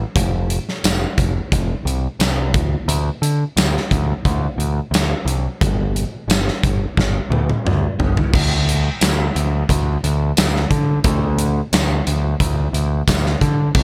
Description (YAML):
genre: classic rock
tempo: 88 BPM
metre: 4/4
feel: straight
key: unclear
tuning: A4 = 437 Hz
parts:
  - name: growling picked electric bass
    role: bass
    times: 0.0-13.8 s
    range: F1 to D3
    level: -21 LUFS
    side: equal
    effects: overdrive
  - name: big rock drum kit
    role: drums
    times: 0.2-13.8 s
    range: crash cymbal, hi-hat, kick drum, snare drum, tambourine, toms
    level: -21 LUFS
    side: equal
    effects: none
room: little or no reverb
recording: none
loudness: -19 LUFS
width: mono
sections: 0.0-8.3 A section; 8.3-13.8 B section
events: drum fill 7.0-8.3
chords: none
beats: | 0.15 0.84 1.52 2.20 | 2.88 3.56 4.24 4.92 | 5.61 6.29 6.97 7.65 | 8.33 9.01 9.69 10.37 | 11.04 11.72 12.40 13.08 | 13.76